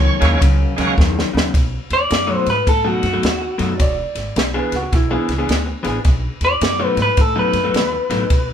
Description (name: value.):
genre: electric blues shuffle.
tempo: 106 BPM.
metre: 4/4.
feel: swing 63% on 8ths.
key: B mixolydian.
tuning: A4 = 440 Hz.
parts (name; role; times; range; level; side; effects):
bright tonewheel organ; accompaniment; 0.0-1.0 s; G#3 to C#5; -20 LUFS; right 3 dB; slow rotary speaker, overdrive.
electric guitar through a small old amp; riff; 0.0-8.2 s; F#2 to G#4; -22 LUFS; left 3 dB; spring reverb.
upright bass; bass; 0.0-8.5 s; E1 to A2; -21 LUFS; equal; none.
compact cocktail drum kit; drums; 0.2-8.5 s; kick drum, ride cymbal, snare drum; -19 LUFS; equal; none.
electric guitar through a small old amp; melody; 1.9-8.5 s; F#4 to D5; -18 LUFS; left 1 dB; harmonic tremolo.
dark upright piano; second line; 3.8-5.4 s; D#4 to D5; -24 LUFS; right 4 dB; none.
room: light reverb.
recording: band playing live in one room.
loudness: -15 LUFS.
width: side -9 dB against mid.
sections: 0.0-1.5 A section; 1.5-8.5 B section.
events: drum fill 1.0-1.5.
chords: 0.0 F#7; 1.5 B7; 3.8 E7; 6.1 B7.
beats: 0.42 0.98 | 1.54 2.11 2.67 3.23 | 3.80 4.36 4.93 5.49 | 6.05 6.62 7.18 7.75 | 8.31.